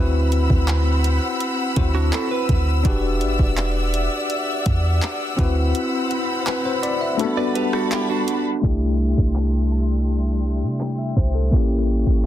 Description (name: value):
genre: contemporary R&B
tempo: 83 BPM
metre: 4/4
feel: straight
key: unclear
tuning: A4 = 443 Hz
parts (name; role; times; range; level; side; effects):
- bell-like tine electric piano; accompaniment; 0.0-12.3 s; A3 to G5; -24 LUFS; left 3 dB; medium stereo tremolo
- warm studio string section; sustained chords; 0.0-12.3 s; G3 to E6; -27 LUFS; equal; none
- clean 808-style bass; bass; 0.0-12.3 s; E1 to C3; -20 LUFS; equal; none
- smooth R&B drum kit; drums; 0.3-12.2 s; handclaps, hi-hat, kick drum, rim click; -22 LUFS; equal; none
- direct-recorded clean electric guitar; arpeggios; 1.9-2.8, 7.4-8.6 s; D4 to D5; -26 LUFS; right 9 dB; lush chorus, ping-pong delay
- concert harp; texture; 2.1-11.8 s; A5 to D6; -37 LUFS; right 2 dB; none
room: little or no reverb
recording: dense, heavily limited modern master, low-pass filter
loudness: -18 LUFS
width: side -12 dB against mid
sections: 0.0-8.6 A section; 8.6-12.3 B section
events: kick muted 5.7-8.6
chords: 0.0 D13; 2.9 Em9; 5.4 D13; 7.2 Gmaj9; 8.6 C6; 11.5 A7b9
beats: 0.68 1.41 2.13 | 2.85 3.57 4.30 5.02 | 5.74 6.46 7.19 7.91 | 8.63 9.36 10.08 10.80 | 11.53 12.25